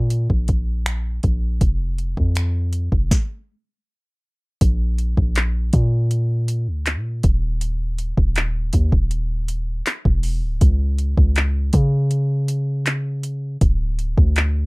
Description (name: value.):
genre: contemporary R&B.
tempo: 80 BPM.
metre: 4/4.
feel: straight.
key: unclear.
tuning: A4 = 439 Hz.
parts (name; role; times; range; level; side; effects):
warm 808-style bass; bass; 0.0-14.7 s; D1 to Db3; -20 LUFS; equal; none.
smooth R&B drum kit; drums; 0.1-14.5 s; finger snaps, handclaps, hi-hat, kick drum, snare drum; -19 LUFS; equal; none.
room: little or no reverb.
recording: rough home demo mix.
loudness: -18 LUFS.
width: side -27 dB against mid.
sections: 0.0-4.6 A section; 4.6-14.7 B section.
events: stop 3.1-4.6.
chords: none.